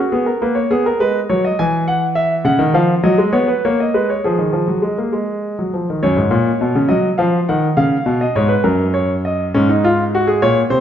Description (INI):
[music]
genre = classical, baroque-style two-part invention for grand piano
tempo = 68 BPM (dotted quarters)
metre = 6/8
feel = straight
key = F# major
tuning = A4 = 440 Hz
[part]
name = warm concert grand piano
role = solo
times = 0.0-10.8 s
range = F#2 to G#5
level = -14 LUFS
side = equal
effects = none
[sound]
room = moderate recital hall reverb, RT60 1.4 s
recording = nothing above 7.5 kHz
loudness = -14 LUFS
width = side -9 dB against mid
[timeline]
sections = 0.0-6.0 A section; 6.0-10.8 B section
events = none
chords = 0.0 C#5; 0.7 B; 1.6 Eadd9; 2.5 F#5/C#; 3.3 G#m; 4.2 D#madd11; 6.0 F#; 6.9 D#madd9; 7.8 C#7; 8.7 F#; 9.5 C#/G#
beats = | 0.70 1.58 | 2.46 3.33 | 4.22 5.12 | 6.02 6.91 | 7.79 8.66 | 9.54 10.41